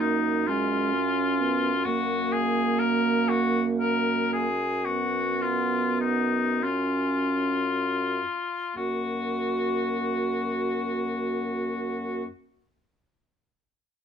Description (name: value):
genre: classical, slow romantic movement for wind quintet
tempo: 26-44 BPM (dotted quarters)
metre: 6/8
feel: rubato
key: F# major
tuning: A4 = 439 Hz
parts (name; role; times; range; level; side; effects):
- clear oboe; second line; 0.0-12.3 s; D#4 to A#4; -27 LUFS; left 5 dB; none
- dark French horn; accompaniment; 0.0-12.3 s; G#3 to C#4; -31 LUFS; left 1 dB; none
- warm clarinet; accompaniment; 0.0-12.3 s; A#3 to F#4; -30 LUFS; right 9 dB; none
- mellow bassoon; bass; 0.0-12.3 s; F#2; -31 LUFS; right 1 dB; none
room: light reverb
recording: close, detailed microphones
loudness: -24 LUFS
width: side -8 dB against mid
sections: 0.0-8.8 A section; 8.8-12.9 B section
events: slowing down 0.5-8.8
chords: 0.0 C#7/F#; 1.9 F#; 4.9 C#7/F#; 8.8 F#